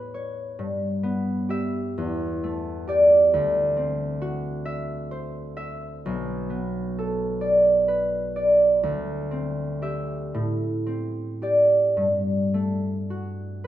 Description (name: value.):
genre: classical, solo harp piece.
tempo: 35-45 BPM (dotted quarters).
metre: 6/8.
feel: rubato.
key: G major.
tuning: A4 = 440 Hz.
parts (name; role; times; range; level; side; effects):
concert harp; solo; 0.0-13.7 s; B1 to E5; -22 LUFS; right 1 dB; none.
room: moderate recital hall reverb, RT60 1.5 s.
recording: minimal, uncompressed stereo recording.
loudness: -21 LUFS.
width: side -12 dB against mid.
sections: 0.0-13.7 A section.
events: none.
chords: 0.0 A9; 0.6 G6; 2.0 Em7; 3.3 D9; 6.0 Bm7; 8.9 D11; 10.4 Am7; 12.0 Gmaj7sus2.